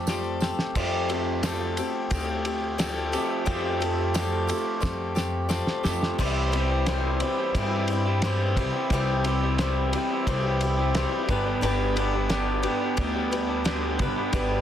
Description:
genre	folk rock and heartland rock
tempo	88 BPM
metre	4/4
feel	straight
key	unclear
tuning	A4 = 442 Hz
part	picked swing-style acoustic guitar	accompaniment	0.0-14.6 s	C3 to C5	-30 LUFS	left 4 dB	none
part	hand-pumped harmonium	sustained chords	0.0-14.6 s	G3 to G4	-35 LUFS	right 3 dB	none
part	electric guitar through a small old amp	riff	0.0-14.6 s	G2 to G4	-29 LUFS	right 1 dB	none
part	upright bass	bass	0.0-14.6 s	G1 to G2	-29 LUFS	equal	none
part	cloth-damped thuddy drum kit	drums	0.1-14.5 s	crash cymbal, kick drum, ride cymbal, snare drum	-30 LUFS	equal	none
part	tambourine	percussion	0.1-6.0 s	none	-42 LUFS	right 13 dB	none
room	moderate large studio reverb, RT60 0.9 s, small room reverb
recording	dense, heavily limited modern master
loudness	-23 LUFS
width	side -10 dB against mid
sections	0.8-6.2 A section; 6.2-14.6 B section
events	drum fill 0.0-0.8, 4.8-6.2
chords	0.0 Fadd9; 6.2 C; 11.3 G

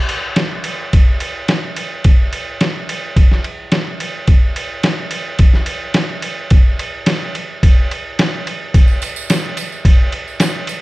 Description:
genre	rock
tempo	108 BPM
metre	4/4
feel	straight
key	none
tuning	none
part	lo-fi sampler-style drum kit	drums	0.1-10.8 s	kick drum, ride cymbal, snare drum	-13 LUFS	equal	none
part	tambourine	percussion	8.8-10.8 s	none	-29 LUFS	right 8 dB	none
room	little or no reverb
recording	dark, warm production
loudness	-13 LUFS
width	side -20 dB against mid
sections	0.0-10.8 A section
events	none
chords	none

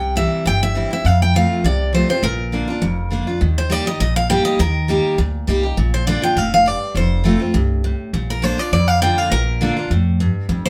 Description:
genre	bluegrass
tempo	203 BPM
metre	4/4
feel	swing 54% on 8ths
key	Bb major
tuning	A4 = 441 Hz
part	picked steel-string acoustic guitar	melody	0.0-10.7 s	Bb4 to G5	-22 LUFS	equal	none
part	picked steel-string acoustic guitar	accompaniment	0.0-10.7 s	F2 to G4	-23 LUFS	equal	none
part	upright bass	bass	0.0-10.7 s	F1 to F2	-22 LUFS	equal	none
room	moderate studio reverb, RT60 0.6 s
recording	band playing live in one room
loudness	-18 LUFS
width	mono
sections	0.0-3.4 A section; 3.4-10.7 B section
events	none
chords	0.0 C; 1.0 F; 2.2 Bb; 3.4 Eb; 5.8 Bb; 7.0 F; 8.1 Bb

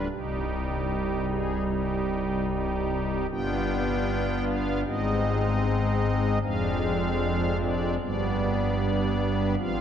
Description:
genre	classical, chorale-style piece for pipe organ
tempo	76 BPM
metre	4/4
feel	straight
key	C minor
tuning	A4 = 436 Hz
part	pipe organ, strings celeste	solo	0.0-9.8 s	C1 to G5	-24 LUFS	equal	none
room	wet cathedral reverb, RT60 6.2 s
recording	dark, warm production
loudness	-24 LUFS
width	side -8 dB against mid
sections	0.0-9.8 A section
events	none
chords	0.1 Cm; 3.3 G7; 4.9 Ab; 6.4 Dm7b5/F; 8.0 G

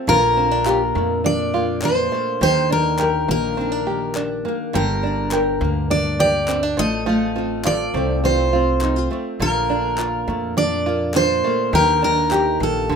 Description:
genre	acoustic pop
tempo	103 BPM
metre	4/4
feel	straight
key	unclear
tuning	A4 = 440 Hz
part	nylon-string guitar	accompaniment	0.0-13.0 s	G2 to Bb4	-22 LUFS	left 1 dB	double-tracked left and right
part	open-back banjo	arpeggios	0.0-13.0 s	D3 to G4	-26 LUFS	right 5 dB	plate reverb
part	picked steel-string acoustic guitar	melody	0.1-13.0 s	A4 to Eb5	-20 LUFS	equal	plate reverb
part	upright bass	bass	0.1-13.0 s	G1 to F2	-26 LUFS	left 1 dB	none
part	group handclap	percussion	0.7-12.4 s	none	-31 LUFS	left 4 dB	none
room	moderate small room reverb, RT60 0.5 s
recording	rough home demo mix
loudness	-17 LUFS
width	side -6 dB against mid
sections	0.0-13.0 A section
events	none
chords	0.1 Bbmaj7; 2.4 Ebmaj7; 4.7 Gm; 6.8 F/A; 9.4 Bbmaj7; 11.7 Ebmaj7

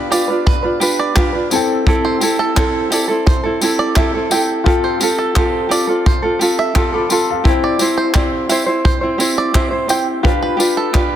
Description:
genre	acoustic pop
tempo	86 BPM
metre	4/4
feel	straight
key	C major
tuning	A4 = 442 Hz
part	felt-muted upright piano	accompaniment	0.0-11.2 s	B3 to E6	-24 LUFS	left 10 dB	none
part	tenor ukulele	accompaniment	0.0-11.2 s	C4 to C5	-16 LUFS	right 2 dB	none
part	bluegrass banjo	arpeggios	0.0-11.2 s	A4 to G5	-22 LUFS	right 4 dB	none
part	soft brush drum kit	drums	0.1-11.1 s	handclaps, kick drum, tambourine	-17 LUFS	equal	none
room	moderate plate reverb, RT60 2.0 s, small room ambience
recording	dense, heavily limited modern master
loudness	-13 LUFS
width	side -10 dB against mid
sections	0.0-11.2 A section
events	none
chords	0.0 G7; 1.5 Am7; 4.7 Fadd9; 7.5 C; 10.2 G7

